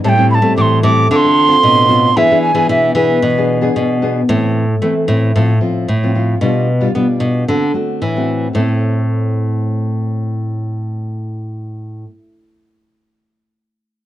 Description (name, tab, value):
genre	samba and choro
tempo	113 BPM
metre	4/4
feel	straight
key	A minor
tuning	A4 = 440 Hz
part	bright wooden flute	melody	0.0-3.7 s	B4 to D6	-12 LUFS	right 3 dB	none
part	nylon-string guitar	accompaniment	0.0-12.1 s	A2 to A4	-18 LUFS	left 3 dB	none
part	nylon-string guitar	bass	0.0-12.0 s	A2 to B3	-15 LUFS	equal	tube saturation
room	light reverb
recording	worn, warbling old tape, cassette tape, warbly pitch drift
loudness	-12 LUFS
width	side -13 dB against mid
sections	0.0-4.3 A section; 4.3-8.5 B section; 8.5-12.8 C section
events	none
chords	0.0 Am7; 1.1 Dm7; 2.2 E7; 4.3 Am; 5.4 F/A; 6.4 G7/B; 7.5 D7; 8.5 Am